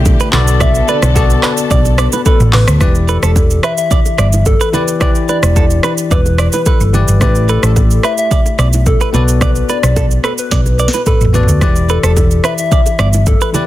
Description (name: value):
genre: afrobeats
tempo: 109 BPM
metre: 4/4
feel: straight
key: E minor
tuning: A4 = 440 Hz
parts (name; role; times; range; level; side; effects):
- soft struck synth lead; melody; 0.0-13.7 s; A4 to E5; -18 LUFS; left 2 dB; chorus
- bell-like tine electric piano; accompaniment; 0.0-13.7 s; E3 to D5; -20 LUFS; left 6 dB; none
- dark studio string section; sustained chords; 0.0-2.8 s; D3 to A4; -23 LUFS; left 2 dB; sidechain pumping
- hollow-body short-scale fingered electric bass; bass; 0.0-13.3 s; E1 to D2; -12 LUFS; equal; none
- afro-pop drum kit; drums; 0.1-13.7 s; handclaps, hi-hat, kick drum, rim click, shaker, snare drum, toms; -14 LUFS; equal; soft clipping on snare
- bongos and congas; percussion; 0.1-13.7 s; none; -23 LUFS; right 4 dB; none
- direct-recorded clean electric guitar; riff; 0.2-13.6 s; A4 to D5; -21 LUFS; right 7 dB; ping-pong delay
room: digital ambience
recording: dense, heavily limited modern master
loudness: -9 LUFS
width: side -14 dB against mid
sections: 0.0-2.8 A section; 2.8-13.7 B section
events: drum fill 10.5-11.6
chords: 0.3 Bm7; 2.8 Em7; 7.2 A7sus4; 9.1 Bm7; 11.6 Em7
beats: 0.06 | 0.61 1.16 1.71 2.26 | 2.81 3.36 3.91 4.46 | 5.01 5.56 6.11 6.66 | 7.21 7.76 8.31 8.86 | 9.41 9.96 10.52 11.06 | 11.62 12.17 12.72 13.27